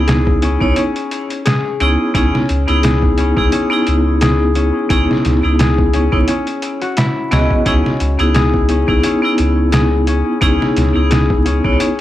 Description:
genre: trip hop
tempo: 87 BPM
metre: 4/4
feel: swing 55% on 16ths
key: C# minor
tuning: A4 = 439 Hz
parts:
  - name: vibraphone with hard mallets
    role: accompaniment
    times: 0.0-11.8 s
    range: B3 to D#5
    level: -16 LUFS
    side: equal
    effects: harmonic tremolo, tape echo
  - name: concert harp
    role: arpeggios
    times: 0.0-12.0 s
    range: C#4 to G#4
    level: -21 LUFS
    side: left 5 dB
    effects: vintage 12-bit sampler grit, tape echo
  - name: soft dub sub bass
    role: bass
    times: 0.0-11.8 s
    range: C#2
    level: -16 LUFS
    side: equal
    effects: transformer saturation
  - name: trip hop sampler-style drum kit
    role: drums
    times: 0.1-12.0 s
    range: hi-hat, kick drum, snare drum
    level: -18 LUFS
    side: equal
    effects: overdrive
room: little or no reverb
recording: dry, gritty hardware recording, vinyl crackle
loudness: -12 LUFS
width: side -13 dB against mid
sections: 0.0-12.0 A section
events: none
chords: 0.0 C#m7

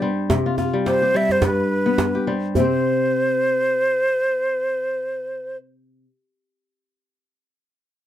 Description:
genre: west african traditional, West African string and xylophone music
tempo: 107 BPM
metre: 4/4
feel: swing 55% on 16ths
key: unclear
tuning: A4 = 439 Hz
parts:
  - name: kora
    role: arpeggios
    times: 0.0-6.1 s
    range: G2 to C5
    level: -21 LUFS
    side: left 2 dB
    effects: none
  - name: djembe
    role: percussion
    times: 0.3-2.8 s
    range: none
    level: -23 LUFS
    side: right 3 dB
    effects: none
  - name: breathy mellow silver concert flute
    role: melody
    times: 0.9-5.6 s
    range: B4 to E5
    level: -20 LUFS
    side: equal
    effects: none
room: light reverb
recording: close, detailed microphones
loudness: -18 LUFS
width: side -11 dB against mid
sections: 0.0-2.6 A section; 2.6-4.8 B section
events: none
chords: 0.3 C5; 1.4 G; 2.6 N.C.

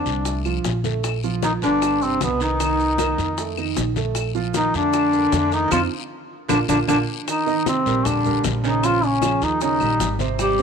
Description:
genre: Afro-Cuban jazz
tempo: 154 BPM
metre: 4/4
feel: straight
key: Bb major, Eb major from 7.3 s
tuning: A4 = 439 Hz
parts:
  - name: warm duduk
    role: melody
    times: 0.0-10.6 s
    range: B3 to G4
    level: -21 LUFS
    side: left 2 dB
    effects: none
  - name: growling baritone saxophone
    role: second line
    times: 0.0-10.6 s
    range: B2 to G3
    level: -29 LUFS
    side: right 10 dB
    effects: none
  - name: warm concert grand piano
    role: accompaniment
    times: 0.0-10.6 s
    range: C3 to Eb5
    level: -27 LUFS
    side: right 12 dB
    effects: none
  - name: upright bass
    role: bass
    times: 0.1-10.6 s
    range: G1 to F2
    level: -26 LUFS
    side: equal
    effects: none
  - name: bongos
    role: percussion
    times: 0.1-10.6 s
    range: none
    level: -29 LUFS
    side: left 14 dB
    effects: none
  - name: congas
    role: percussion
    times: 0.1-10.6 s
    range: none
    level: -31 LUFS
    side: left 11 dB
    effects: none
  - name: guiro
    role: percussion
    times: 0.1-10.6 s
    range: none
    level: -35 LUFS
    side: left 15 dB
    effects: none
  - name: maracas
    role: percussion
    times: 0.1-10.6 s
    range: none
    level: -34 LUFS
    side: right 16 dB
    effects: none
  - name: claves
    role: percussion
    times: 0.5-10.6 s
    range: none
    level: -31 LUFS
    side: left 20 dB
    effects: none
room: light reverb, studio reverb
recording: 1960s-style stereo with parts hard left and right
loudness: -18 LUFS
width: side -6 dB against mid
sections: 0.0-7.3 A section; 7.3-10.6 B section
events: band accent 5.7-7.3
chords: 0.0 F6; 1.0 Bb5; 1.8 G; 2.6 Cm7; 3.4 F7; 4.2 Bbmaj7; 5.7 F5; 6.5 Bb; 7.3 Eb6; 8.8 Bbm7; 9.6 Eb7

